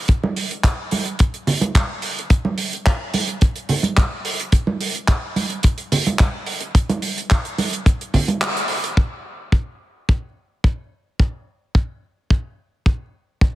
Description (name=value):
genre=nu-disco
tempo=108 BPM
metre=4/4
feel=straight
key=none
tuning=none
part: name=damped 70s drum kit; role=drums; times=0.1-8.9 s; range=handclaps, hi-hat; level=-23 LUFS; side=right 2 dB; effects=low-pass filter on hats, low-pass filter on snare, low-pass filter on room
part: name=kick drum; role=drums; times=0.1-13.5 s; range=none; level=-15 LUFS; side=equal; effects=none
part: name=congas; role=percussion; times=0.2-8.4 s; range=none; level=-23 LUFS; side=right 3 dB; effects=none
room=light reverb, small room ambience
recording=heavily compressed radio sound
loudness=-18 LUFS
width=side -16 dB against mid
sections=0.0-9.0 A section; 9.0-13.6 B section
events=break 8.4-9.0; band accent 8.4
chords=none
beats=| 0.08 0.64 1.19 1.75 | 2.31 2.86 3.42 3.97 | 4.53 5.08 5.64 6.19 | 6.75 7.30 7.86 8.42 | 8.97 9.53 10.08 10.64 | 11.19 11.75 12.30 12.86 | 13.42